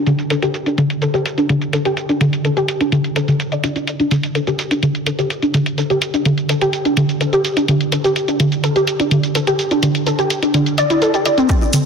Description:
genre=progressive house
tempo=126 BPM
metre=4/4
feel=straight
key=unclear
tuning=A4 = 439 Hz
part: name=soft round pluck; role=arpeggios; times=0.0-11.8 s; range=D3 to D5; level=-15 LUFS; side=equal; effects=ensemble chorus, sidechain pumping, ping-pong delay
part: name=electronic hi-hat and shaker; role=drums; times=0.1-11.8 s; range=none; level=-22 LUFS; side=equal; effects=sidechain pumping on hats, high-pass filter on hats, low-pass filter on hats, sidechain pumping on perc, high-pass filter on perc, low-pass filter on perc
part: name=electronic kick drum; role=drums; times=11.5-11.6 s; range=none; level=-15 LUFS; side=equal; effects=none
room=wet concert hall reverb, RT60 1.9 s, digital ambience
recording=dense, heavily limited modern master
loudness=-14 LUFS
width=side -6 dB against mid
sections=0.0-11.5 A section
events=filter sweep on synth pluck 0.0-11.5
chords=none

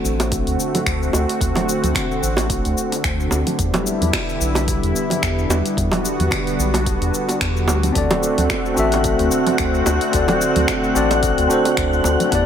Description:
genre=sunset chillout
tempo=110 BPM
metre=4/4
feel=swing 56% on 16ths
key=unclear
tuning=A4 = 440 Hz
part: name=lush unison pad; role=sustained chords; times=0.0-12.5 s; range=D3 to F#4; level=-21 LUFS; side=equal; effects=chorus
part: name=round analog bass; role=bass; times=0.0-12.4 s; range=A1 to E2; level=-21 LUFS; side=equal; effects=none
part: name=deep house drum kit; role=drums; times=0.1-12.4 s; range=congas, finger snaps, hi-hat, shaker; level=-25 LUFS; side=equal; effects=none
part: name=bongos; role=percussion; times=0.2-12.2 s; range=none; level=-25 LUFS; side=right 2 dB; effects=none
part: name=electronic kick drum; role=drums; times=0.3-12.4 s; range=none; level=-28 LUFS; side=equal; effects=none
part: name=tine electric piano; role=accompaniment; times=7.9-12.5 s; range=B3 to E5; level=-19 LUFS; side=moving between left 5 dB and right 4 dB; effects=auto-pan, ping-pong delay
part: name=wind-like tuned noise texture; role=texture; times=8.4-12.5 s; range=F#5 to F#6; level=-25 LUFS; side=left 3 dB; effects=built-in reverb
room=light reverb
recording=none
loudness=-16 LUFS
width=side -9 dB against mid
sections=0.0-12.5 A section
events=none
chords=0.0 D7; 3.6 Em7; 8.0 D7

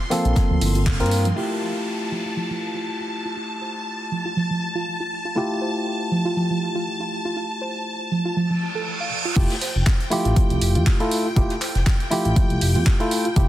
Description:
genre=deep house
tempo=120 BPM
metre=4/4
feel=swing 55% on 16ths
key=F major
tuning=A4 = 439 Hz
part: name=string machine, violins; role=texture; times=0.0-13.5 s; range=G5 to C6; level=-30 LUFS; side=equal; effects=ensemble chorus, sidechain pumping
part: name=soft round pluck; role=arpeggios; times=0.1-13.5 s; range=F3 to F5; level=-27 LUFS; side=right 2 dB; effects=chorus, sidechain pumping, analog delay
part: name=bright tine electric piano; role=stabs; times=0.1-13.5 s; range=A3 to Bb4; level=-26 LUFS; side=equal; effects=overdrive, sidechain pumping, low-pass filter, tape echo
part: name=house drum kit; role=drums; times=0.1-1.5, 9.4-13.5 s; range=crash cymbal, handclaps, hi-hat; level=-30 LUFS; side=right 1 dB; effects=low-pass filter on hats, soft clipping on snare, low-pass filter on snare, low-pass filter on cymbals, low-pass filter on room
part: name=jazz brush drum kit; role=drums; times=0.1-1.3, 9.4-13.5 s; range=hi-hat, snare drum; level=-37 LUFS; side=left 3 dB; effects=none
part: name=smooth synth bass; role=bass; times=0.3-1.3, 9.4-13.5 s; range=F1 to G2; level=-20 LUFS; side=equal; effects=none
part: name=electronic kick drum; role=drums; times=0.4-1.0, 9.4-13.5 s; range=none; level=-19 LUFS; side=equal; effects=none
part: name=downlifter and reverse cymbal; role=sound effects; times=1.4-9.4 s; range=none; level=-32 LUFS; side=right 3 dB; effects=none
room=light reverb, digital ambience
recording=dense, heavily limited modern master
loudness=-20 LUFS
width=side -14 dB against mid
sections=0.0-1.4 A section; 1.4-9.4 B section; 9.4-13.5 C section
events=filter sweep on tine electric piano 0.0-1.4; band accent 0.9; filter sweep on synth arpeggio sound 1.4-9.4; reverse cymbal 8.5-9.4; drop 9.4-13.5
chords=0.0 Gm11; 1.4 Fmaj9; 9.1 F; 9.4 Fmaj9

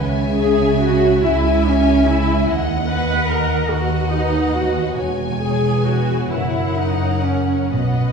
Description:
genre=classical, slow romantic movement for string orchestra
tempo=40-50 BPM (dotted quarters)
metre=6/8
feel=rubato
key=unclear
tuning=A4 = 440 Hz
part: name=rich studio violin section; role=melody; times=0.0-8.1 s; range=F#5 to G#5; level=-28 LUFS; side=left 1 dB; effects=none
part: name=warm studio violin section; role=second line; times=0.0-8.1 s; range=A#4 to F#5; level=-26 LUFS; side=left 5 dB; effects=none
part: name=rich studio double bass section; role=bass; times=0.0-8.1 s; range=E1 to D#2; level=-21 LUFS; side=right 1 dB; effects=none
part: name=warm studio cello section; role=bass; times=0.0-8.1 s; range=D#2 to C#3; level=-22 LUFS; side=right 3 dB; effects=none
part: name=warm studio viola section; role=accompaniment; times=0.4-8.1 s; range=B3 to B4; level=-19 LUFS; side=equal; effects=none
room=wet scoring stage reverb, RT60 2.0 s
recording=heard from further back in the room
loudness=-15 LUFS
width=side -5 dB against mid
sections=0.0-8.1 A section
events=none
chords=0.0 C#m; 2.5 D#m; 3.7 B/D#; 5.0 C#m/E; 6.3 F#

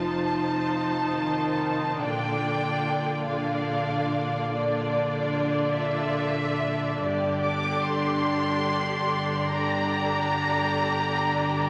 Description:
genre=classical, slow romantic movement for symphony orchestra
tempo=48 BPM (dotted quarters)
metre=12/8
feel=rubato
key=unclear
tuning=A4 = 440 Hz
part: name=warm symphonic violin section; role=melody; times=0.0-11.7 s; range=D5 to D6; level=-31 LUFS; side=equal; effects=none
part: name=clear symphonic violin section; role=second line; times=0.0-11.7 s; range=F4 to D5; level=-34 LUFS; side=equal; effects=none
part: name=rich studio viola section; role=accompaniment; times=0.0-11.7 s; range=D3 to Eb4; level=-30 LUFS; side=equal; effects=none
part: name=dark symphonic cello section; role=bass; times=0.0-11.7 s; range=F2 to Bb2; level=-38 LUFS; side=equal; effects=none
part: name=rich symphonic double bass section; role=bass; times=0.0-11.7 s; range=F1 to Bb1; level=-40 LUFS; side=equal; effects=none
room=wet concert hall reverb, RT60 1.9 s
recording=vinyl crackle, nothing above 10.4 kHz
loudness=-26 LUFS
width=mono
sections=0.0-11.7 A section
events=none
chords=0.0 F7; 2.0 Bb; 7.0 Gm

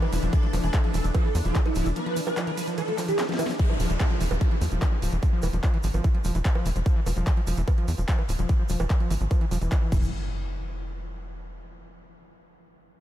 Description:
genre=psychedelic trance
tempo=147 BPM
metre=4/4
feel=straight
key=unclear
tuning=A4 = 440 Hz
part: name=swarming rave lead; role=melody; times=0.0-3.5 s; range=E4 to B4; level=-32 LUFS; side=right 2 dB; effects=chorus, phaser, sidechain pumping, analog delay
part: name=bubbling stepped-filter texture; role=sustained chords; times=0.0-3.6 s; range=E3 to D4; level=-36 LUFS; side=left 2 dB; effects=chorus, built-in reverb, sidechain pumping
part: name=overdriven acid bass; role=riff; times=0.0-10.1 s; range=E3 to F3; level=-33 LUFS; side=moving between left 4 dB and right 4 dB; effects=auto-pan, sidechain pumping, analog delay
part: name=drum and bass drum kit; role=drums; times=0.0-10.0 s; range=bongos, crash cymbal, handclaps, hi-hat, ride cymbal, snare drum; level=-35 LUFS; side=right 2 dB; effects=overdrive
part: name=tight sequencer bass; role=bass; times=0.1-10.1 s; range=D1 to E2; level=-26 LUFS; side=equal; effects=none
part: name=egg shaker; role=percussion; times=0.1-10.1 s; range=none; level=-45 LUFS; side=right 4 dB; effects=none
part: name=electronic kick drum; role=drums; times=0.3-10.0 s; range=none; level=-22 LUFS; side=equal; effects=none
part: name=downlifter and impact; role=sound effects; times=3.6-6.9, 9.9-11.6 s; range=none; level=-36 LUFS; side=equal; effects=none
room=light reverb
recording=none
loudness=-22 LUFS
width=side -12 dB against mid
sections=0.0-3.6 A section; 3.6-10.1 B section; 10.1-11.8 C section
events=drop 0.0-3.6; break 2.0-3.6; drum fill 3.2-3.6; filter sweep on acid bass 3.6-10.1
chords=0.0 E5; 3.6 Dmadd9 (rootless); 9.9 N.C.

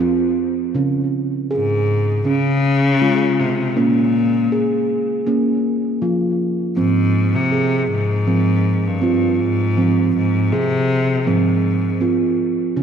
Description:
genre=world meditative, meditative tuned percussion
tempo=80 BPM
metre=4/4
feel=swing 56% on 16ths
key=F minor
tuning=A4 = 440 Hz
part: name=clear cello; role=melody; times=0.0-12.4 s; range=F2 to Db3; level=-19 LUFS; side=left 3 dB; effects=diffuse ambient delay
part: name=steel tongue drum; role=arpeggios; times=0.0-12.8 s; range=Db3 to Ab4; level=-18 LUFS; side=right 2 dB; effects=diffuse ambient delay
room=wet concert hall reverb, RT60 1.9 s, small room ambience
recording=nothing above 10.7 kHz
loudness=-15 LUFS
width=side -8 dB against mid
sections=0.0-12.8 A section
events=none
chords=0.0 F5; 0.8 Db; 3.8 Bbm; 6.8 Fm

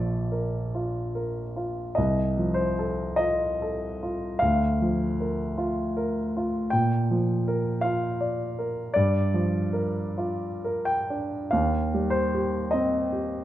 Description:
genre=classical, romantic nocturne for solo piano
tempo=42-54 BPM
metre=4/4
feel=rubato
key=Bb major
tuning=A4 = 440 Hz
part: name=warm grand piano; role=solo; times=0.0-13.4 s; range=Bb1 to G5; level=-24 LUFS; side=equal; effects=none
room=moderate recital hall reverb, RT60 1.3 s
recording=dark, warm production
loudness=-24 LUFS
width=side -13 dB against mid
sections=0.0-13.4 A section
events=none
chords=0.0 Bb; 2.0 F7/C; 4.4 Bb/D; 6.7 Bb; 8.9 Gm7; 11.5 Cm/Eb

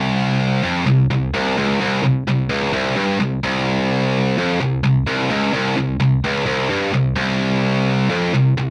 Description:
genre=metal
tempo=128 BPM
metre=4/4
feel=straight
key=unclear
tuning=A4 = 440 Hz
part: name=heavy high-gain guitar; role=solo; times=0.0-8.7 s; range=C2 to G2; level=-18 LUFS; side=equal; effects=distortion
room=little or no reverb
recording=dry, close 1970s-style studio recording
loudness=-18 LUFS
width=mono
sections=0.0-8.7 A section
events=none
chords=none

